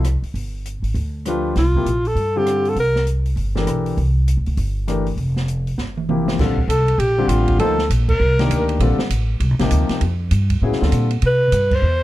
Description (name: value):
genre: modal jazz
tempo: 198 BPM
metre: 4/4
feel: swing 62% on 8ths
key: Bb major from 6.4 s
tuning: A4 = 440 Hz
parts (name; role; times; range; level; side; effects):
- clear concert grand piano; accompaniment; 0.0-11.1 s; C3 to C5; -22 LUFS; left 3 dB; none
- upright bass; bass; 0.0-12.0 s; F1 to C3; -19 LUFS; equal; none
- open jazz drum kit; drums; 0.0-11.8 s; crash cymbal, hi-hat, kick drum, ride cymbal, rim click, snare drum, toms; -26 LUFS; right 2 dB; none
- breathy alto saxophone; melody; 1.3-3.1, 6.7-8.7, 11.3-12.0 s; F4 to C5; -19 LUFS; equal; plate reverb
room: light reverb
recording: dark, warm production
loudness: -16 LUFS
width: side -15 dB against mid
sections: 0.0-6.4 A section; 6.4-12.0 B section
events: drum fill 5.8-6.4; band accent 8.1, 11.7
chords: 0.0 G9sus4; 1.6 C9sus4; 6.4 Bbmaj9; 11.2 Cmaj7